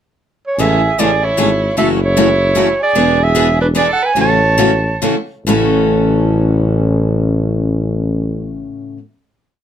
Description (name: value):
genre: acoustic string swing (jazz manouche)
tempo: 129-152 BPM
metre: 3/4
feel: swing 64% on 8ths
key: A major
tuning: A4 = 440 Hz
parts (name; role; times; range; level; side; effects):
- breathy clarinet; melody; 0.5-5.0 s; B4 to A5; -15 LUFS; right 2 dB; none
- warm violin; second line; 0.6-5.0 s; D4 to C#5; -20 LUFS; right 4 dB; none
- picked steel-string acoustic guitar; accompaniment; 0.6-9.0 s; A2 to G#4; -18 LUFS; left 4 dB; none
- picked steel-string acoustic guitar; accompaniment; 0.6-9.0 s; E3 to C#5; -22 LUFS; right 6 dB; none
- breathy tuba; bass; 0.6-8.7 s; E1 to A1; -16 LUFS; equal; none
room: light reverb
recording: none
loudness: -12 LUFS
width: side -9 dB against mid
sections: 0.0-0.6 pickup bar; 0.6-5.5 A section; 5.5-8.2 final chord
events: slowing down 2.9-5.5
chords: 0.0 N.C.; 0.6 Amaj7; 1.8 F#m7; 2.9 E7; 4.2 A6